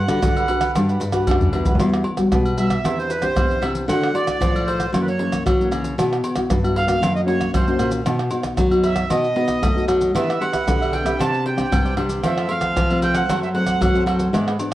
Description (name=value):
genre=samba and choro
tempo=115 BPM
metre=4/4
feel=straight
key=E minor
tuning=A4 = 440 Hz
part: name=accordion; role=melody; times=0.0-14.0 s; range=B4 to A5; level=-24 LUFS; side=right 3 dB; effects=plate reverb, tape echo
part: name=nylon-string guitar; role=accompaniment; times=0.0-14.7 s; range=F2 to B4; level=-23 LUFS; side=left 2 dB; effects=none
part: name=nylon-string guitar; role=bass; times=0.0-14.6 s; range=E2 to B3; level=-23 LUFS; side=equal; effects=none
part: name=cavaquinho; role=accompaniment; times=0.1-1.8, 10.1-14.7 s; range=D4 to F#5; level=-29 LUFS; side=right 3 dB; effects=none
part: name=maracas, surdo, pandeiro, tamborim and agogo bells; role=percussion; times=0.1-14.7 s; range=none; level=-22 LUFS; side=equal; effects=none
room=moderate studio reverb, RT60 0.8 s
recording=worn, warbling old tape, cassette tape, warbly pitch drift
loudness=-17 LUFS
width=side -15 dB against mid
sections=0.0-1.8 A section; 1.8-14.7 B section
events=accordion solo 0.0-1.8; drum fill 1.1-1.8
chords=0.0 Gmaj7; 1.8 Emadd9; 2.8 Cadd9/E; 3.9 Dadd9; 4.9 F#7; 6.0 Bsus4; 7.0 F#; 8.1 B; 10.2 Em7; 11.2 Csus2; 12.2 F; 13.3 F#dim